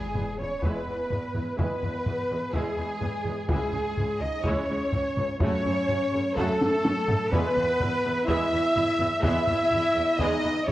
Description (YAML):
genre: cinematic, epic orchestral film score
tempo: 126 BPM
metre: 4/4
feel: straight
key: E major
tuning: A4 = 442 Hz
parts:
  - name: rich symphonic violin section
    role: melody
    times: 0.0-10.7 s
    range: G#4 to E5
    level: -35 LUFS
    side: left 1 dB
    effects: none
  - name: bright small flute group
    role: second line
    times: 0.0-10.7 s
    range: G#4 to E5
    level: -36 LUFS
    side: equal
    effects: none
  - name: rich studio violin section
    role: second line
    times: 0.0-10.7 s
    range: G#4 to E5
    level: -36 LUFS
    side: equal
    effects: none
  - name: mellow French horn section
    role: sustained chords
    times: 0.0-10.7 s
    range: G#3 to E4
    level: -32 LUFS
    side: left 1 dB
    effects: none
  - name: dark trumpet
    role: stabs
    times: 0.0-10.7 s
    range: G#4 to E5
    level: -33 LUFS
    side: right 1 dB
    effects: none
  - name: rich symphonic cello section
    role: bass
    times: 0.0-10.7 s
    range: G#4 to E5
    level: -32 LUFS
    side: equal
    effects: none
  - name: sub drop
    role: sound effects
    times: 0.0-1.6 s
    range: none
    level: -41 LUFS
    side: equal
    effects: none
  - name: clear symphonic double bass section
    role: bass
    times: 0.1-10.7 s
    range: C#2 to F#2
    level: -33 LUFS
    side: right 1 dB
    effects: none
  - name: taiko ensemble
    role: drums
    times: 0.1-10.7 s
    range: none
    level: -30 LUFS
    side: equal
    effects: none
  - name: warm symphonic viola section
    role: accompaniment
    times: 0.2-10.7 s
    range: C#3 to G#4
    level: -35 LUFS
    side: right 1 dB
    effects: none
  - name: bright trombone section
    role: sustained chords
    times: 0.6-10.4 s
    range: C#3 to A3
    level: -38 LUFS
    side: right 1 dB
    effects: none
room: moderate scoring stage reverb, RT60 1.9 s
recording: worn, warbling old tape, cassette tape, warbly pitch drift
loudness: -24 LUFS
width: side -15 dB against mid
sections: 0.0-10.7 A section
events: impact 0.0-1.6; drum fill 6.6-7.3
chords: 0.0 E; 3.5 C#m; 5.4 F#m; 7.3 E